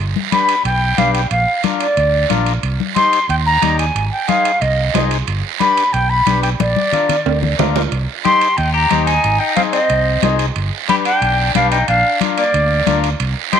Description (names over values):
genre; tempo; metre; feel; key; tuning
latin, cumbia; 182 BPM; 4/4; straight; C minor; A4 = 440 Hz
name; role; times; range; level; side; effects
fingered electric bass; bass; 0.0-13.3 s; G1 to Eb2; -19 LUFS; right 1 dB; none
congas; percussion; 0.2-13.6 s; none; -21 LUFS; left 11 dB; none
silver concert flute; melody; 0.3-13.6 s; D5 to C6; -16 LUFS; equal; none
combo organ; accompaniment; 0.3-13.6 s; D4 to D5; -23 LUFS; left 9 dB; none
guiro; percussion; 0.3-13.6 s; none; -25 LUFS; right 16 dB; none
timbales; percussion; 0.3-13.6 s; none; -25 LUFS; right 14 dB; none
clean electric guitar; second line; 8.2-13.6 s; Bb3 to G4; -21 LUFS; left 8 dB; none
room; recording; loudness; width
wet spring reverb, RT60 1.6 s, studio reverb; 1960s-style stereo with parts hard left and right; -13 LUFS; side -8 dB against mid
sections
0.0-7.9 A section; 7.9-13.6 A section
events
drum fill 6.6-7.9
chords
0.0 G; 1.3 Bb; 2.6 Cm; 4.0 Ab; 5.3 G; 6.6 Bb; 7.9 Cm; 9.2 Ab; 10.6 G; 11.9 Bb